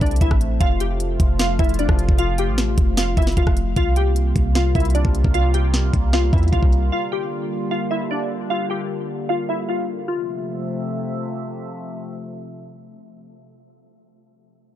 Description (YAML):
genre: hip hop, trap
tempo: 152 BPM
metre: 4/4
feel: half-time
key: F major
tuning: A4 = 440 Hz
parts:
  - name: glassy wavetable pluck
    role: melody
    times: 0.0-11.2 s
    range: D4 to G5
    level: -24 LUFS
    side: left 2 dB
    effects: chorus, ping-pong delay
  - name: sweeping resonant pad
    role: sustained chords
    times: 0.0-13.3 s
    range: C3 to E5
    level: -27 LUFS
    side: equal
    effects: chorus
  - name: clean 808-style bass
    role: bass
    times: 0.0-6.9 s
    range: F1 to E2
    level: -19 LUFS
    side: equal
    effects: none
  - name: trap drum kit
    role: drums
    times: 0.0-6.8 s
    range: hi-hat, kick drum, rim click, snare drum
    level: -19 LUFS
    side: equal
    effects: none
room: digital ambience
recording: dark, warm production, low-pass filter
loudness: -18 LUFS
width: side -12 dB against mid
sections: 0.0-3.8 A section; 3.8-10.1 B section; 10.1-13.2 C section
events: none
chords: 0.0 Am; 0.6 Fmaj7; 3.8 C7sus4; 6.9 Gm7; 10.1 Fmaj7